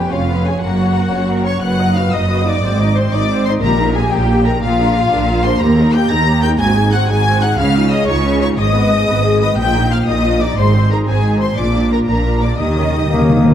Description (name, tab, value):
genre	cinematic, heroic adventure film score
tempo	120 BPM (dotted quarters)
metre	12/8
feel	straight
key	unclear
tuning	A4 = 441 Hz
part	rich studio violin section	melody	0.0-13.4 s	F5 to Bb6	-22 LUFS	left 4 dB	none
part	warm symphonic violin section	second line	0.0-13.5 s	F4 to Bb5	-20 LUFS	left 2 dB	none
part	warm symphonic viola section	accompaniment	0.0-13.5 s	F3 to D#5	-20 LUFS	equal	none
part	rich symphonic cello section	bass	0.0-13.5 s	Eb2 to Eb3	-18 LUFS	right 1 dB	none
part	rich symphonic double bass section	bass	0.0-13.5 s	F1 to Eb2	-18 LUFS	right 1 dB	none
part	timpani	percussion	3.6-4.1, 12.6-13.5 s	Bb2 to Eb3	-18 LUFS	left 1 dB	none
part	dark French horn section	sustained chords	13.1-13.5 s	Bb3	-14 LUFS	left 3 dB	none
part	mellow trumpet	stabs	13.1-13.5 s	Bb3	-19 LUFS	left 1 dB	none
room	wet scoring stage reverb, RT60 1.9 s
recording	none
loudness	-12 LUFS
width	side -10 dB against mid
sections	0.0-13.5 A section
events	timpani fill 12.6-13.5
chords	0.0 Db7/F; 0.6 Gb; 1.6 B/F#; 2.6 Ab; 3.6 Eb/Bb; 4.6 Bb; 5.6 Eb; 6.6 Ab7; 7.6 Dbadd9; 8.6 Abm; 9.6 Bbsus4; 10.6 Ab; 11.6 Bb; 12.6 Eb7